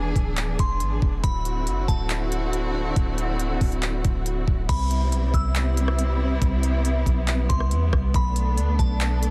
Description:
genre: hip hop, atmospheric cloud-rap.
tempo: 139 BPM.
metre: 4/4.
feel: half-time.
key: C lydian.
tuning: A4 = 439 Hz.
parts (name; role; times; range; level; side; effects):
warm symphonic string section; sustained chords; 0.0-9.3 s; D3 to G#4; -31 LUFS; equal; sidechain pumping.
soft 808-style bass; bass; 0.0-9.3 s; D1 to E2; -26 LUFS; equal; none.
trap drum kit; drums; 0.2-9.3 s; crash cymbal, handclaps, hi-hat, kick drum, rim click; -27 LUFS; equal; none.
glassy synth bell; melody; 0.6-9.3 s; A5 to E6; -35 LUFS; equal; chorus, phaser, low-pass filter, tape echo.
room: digital ambience.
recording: dense, heavily limited modern master.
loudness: -23 LUFS.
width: mono.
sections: 0.0-4.7 A section; 4.7-9.3 B section.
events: none.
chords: 0.0 E7; 1.2 D9; 4.7 Cmaj7; 8.1 Bm7.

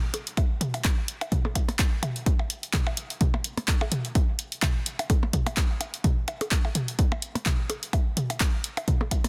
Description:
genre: techno.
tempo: 127 BPM.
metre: 4/4.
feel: swing 56% on 16ths.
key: none.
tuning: none.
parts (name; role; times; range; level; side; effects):
punchy analog drum machine; drums; 0.1-9.3 s; handclaps, hi-hat; -33 LUFS; equal; none.
electronic percussion blips and toms; percussion; 0.1-9.3 s; none; -34 LUFS; equal; dub echo.
electronic kick drum; drums; 0.4-9.2 s; none; -27 LUFS; equal; none.
room: little or no reverb.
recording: dense, heavily limited modern master.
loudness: -27 LUFS.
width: mono.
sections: 0.0-9.3 A section.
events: none.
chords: none.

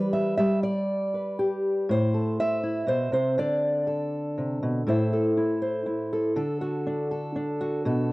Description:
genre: folk, solo fingerstyle acoustic guitar.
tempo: 121 BPM.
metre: 3/4.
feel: straight.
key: A dorian.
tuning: A4 = 440 Hz.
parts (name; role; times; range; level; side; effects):
fingerpicked steel-string acoustic guitar; solo; 0.0-8.1 s; A2 to E5; -24 LUFS; equal; cassette tape.
room: light reverb, small room ambience.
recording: home recording on cassette.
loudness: -24 LUFS.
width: side -20 dB against mid.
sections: 0.0-4.9 A section; 4.9-8.1 B section.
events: none.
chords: 0.4 G; 1.9 Am; 3.4 D5; 4.9 Am; 6.4 D.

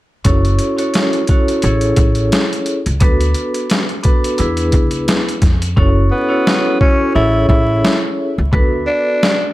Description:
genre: hip hop, boom-bap hip-hop.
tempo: 87 BPM.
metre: 4/4.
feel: swing 56% on 16ths.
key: F# minor.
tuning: A4 = 440 Hz.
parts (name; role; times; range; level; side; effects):
vibraphone with soft mallets; accompaniment; 0.2-9.3 s; B3 to C#5; -17 LUFS; equal; cassette tape, high-pass filter, low-pass filter.
boom bap sampler-style drum kit; drums; 0.2-9.4 s; hi-hat, kick drum, snare drum; -15 LUFS; equal; none.
upright bass; bass; 0.3-8.8 s; F#1 to E#2; -16 LUFS; equal; none.
growling tenor saxophone; melody; 6.1-9.5 s; B3 to E4; -17 LUFS; equal; high-pass filter, low-pass filter, tape echo.
room: studio ambience.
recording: vinyl crackle.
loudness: -12 LUFS.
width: side -17 dB against mid.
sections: 0.3-5.8 A section; 5.8-9.5 B section.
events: hi-hats muted 5.8-9.5.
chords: 0.3 F#m7; 1.6 Amaj7; 3.0 D6; 4.4 E7; 5.8 F#m7; 7.1 Amaj7; 8.5 D6.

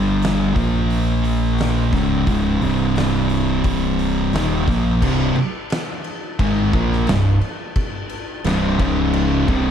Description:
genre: stoner and doom metal.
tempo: 87 BPM.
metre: 4/4.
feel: straight.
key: C minor.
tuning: A4 = 438 Hz.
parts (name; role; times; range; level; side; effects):
fuzz guitar; riff; 0.0-9.7 s; C2 to Bb3; -21 LUFS; left 8 dB; distortion.
thick fuzz guitar; riff; 0.0-9.7 s; C2 to Bb3; -21 LUFS; right 8 dB; distortion.
growling fingered electric bass; bass; 0.0-9.7 s; C1 to Bb1; -23 LUFS; equal; overdrive.
oversized low-tuned drum kit; drums; 0.2-9.7 s; crash cymbal, hi-hat, kick drum, snare drum; -24 LUFS; equal; none.
fuzz guitar; riff; 5.0-9.7 s; C2 to Bb3; -24 LUFS; left 1 dB; distortion.
room: studio ambience.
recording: dark, warm production.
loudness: -16 LUFS.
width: side -8 dB against mid.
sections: 0.0-5.0 A section; 5.0-9.7 B section.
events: none.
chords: 0.0 G5; 0.6 Bb5; 1.9 Cm; 8.8 Db5.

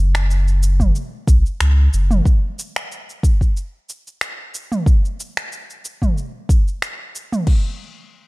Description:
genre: organic downtempo.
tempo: 92 BPM.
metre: 4/4.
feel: swing 54% on 16ths.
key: unclear.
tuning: A4 = 440 Hz.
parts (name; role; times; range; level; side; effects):
warm sub bass; bass; 0.0-2.2 s; F#1 to C#2; -14 LUFS; equal; sidechain pumping.
deep house drum kit; drums; 0.1-7.6 s; crash cymbal, finger snaps, shaker, toms; -25 LUFS; right 1 dB; overdrive.
electronic kick drum; drums; 0.8-7.6 s; none; -15 LUFS; equal; none.
room: digital ambience.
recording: none.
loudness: -16 LUFS.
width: side -23 dB against mid.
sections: 0.0-7.5 A section.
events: filter sweep on sub bass 0.0-2.2.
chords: none.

